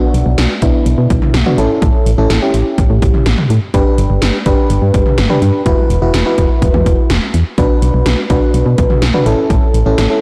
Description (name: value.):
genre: synth-pop.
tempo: 125 BPM.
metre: 4/4.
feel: straight.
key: B minor.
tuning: A4 = 440 Hz.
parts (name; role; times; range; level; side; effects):
FM electric piano; accompaniment; 0.0-10.2 s; B3 to B4; -18 LUFS; equal; none.
solid FM bass; bass; 0.1-10.1 s; E1 to B2; -15 LUFS; equal; none.
80s electronic pad drums; drums; 0.1-10.1 s; hi-hat, kick drum, snare drum, toms; -17 LUFS; equal; gated reverb on snare and toms, overdrive.
room: moderate lush hall reverb, RT60 1.9 s, digital ambience.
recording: blown-out, overdriven recording, overdrive.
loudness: -12 LUFS.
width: mono.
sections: 0.0-10.2 A section.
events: none.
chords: 0.0 Bm; 1.6 A; 3.7 G; 5.7 Esus2; 7.6 Bm; 9.3 A.